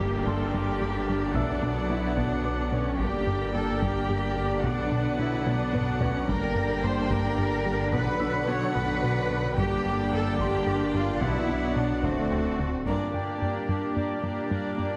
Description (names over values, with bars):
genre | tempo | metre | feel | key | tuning
cinematic, hybrid orchestral and electronic film score | 73 BPM (dotted quarters) | 6/8 | straight | unclear | A4 = 440 Hz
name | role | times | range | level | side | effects
dark chamber violin section | second line | 0.0-15.0 s | Bb4 to G5 | -37 LUFS | equal | none
rich symphonic viola section | accompaniment | 0.0-15.0 s | F#3 to D4 | -38 LUFS | equal | none
bright trombone section | sustained chords | 0.0-15.0 s | A2 to A3 | -38 LUFS | equal | none
chorused pulse-width pad | sustained chords | 0.0-15.0 s | F#3 to D5 | -38 LUFS | equal | none
dark French horn section | sustained chords | 0.0-15.0 s | Bb3 to D4 | -38 LUFS | equal | none
warbly dusty pluck | arpeggios | 0.0-14.9 s | D3 to B4 | -40 LUFS | equal | none
plucky analog bass | riff | 0.0-14.9 s | D2 to B2 | -34 LUFS | equal | none
clear symphonic double bass section | bass | 0.0-12.7 s | G1 to G2 | -39 LUFS | equal | none
rich symphonic cello section | bass | 0.0-15.0 s | G2 to C#5 | -34 LUFS | equal | none
saturated sub bass | bass | 0.0-12.9 s | D1 to B1 | -39 LUFS | equal | none
impact | sound effects | 0.0-1.4 s | none | -43 LUFS | equal | none
clear grand piano | texture | 0.3-4.7, 8.2-15.0 s | E5 to E6 | -45 LUFS | equal | none
taiko ensemble | drums | 1.3-13.9 s | none | -39 LUFS | equal | none
room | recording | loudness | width
wet concert hall reverb, RT60 2.1 s | heavily compressed radio sound | -27 LUFS | mono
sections
0.0-12.9 A section; 12.9-15.0 B section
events
impact 0.0-1.4; drum fill 5.5-6.3; band accent 12.9-13.4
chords
0.0 Gm; 1.4 Bm; 3.0 Gm; 4.6 Bm; 6.3 Gm; 7.9 Bm; 9.6 Gm; 11.2 Bm; 12.0 D7; 12.9 Gm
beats
0.53 | 1.35 2.18 | 3.00 3.82 | 4.64 5.46 | 6.29 7.11 | 7.93 8.75 | 9.57 10.39 | 11.22 12.04 | 12.86 13.68 | 14.51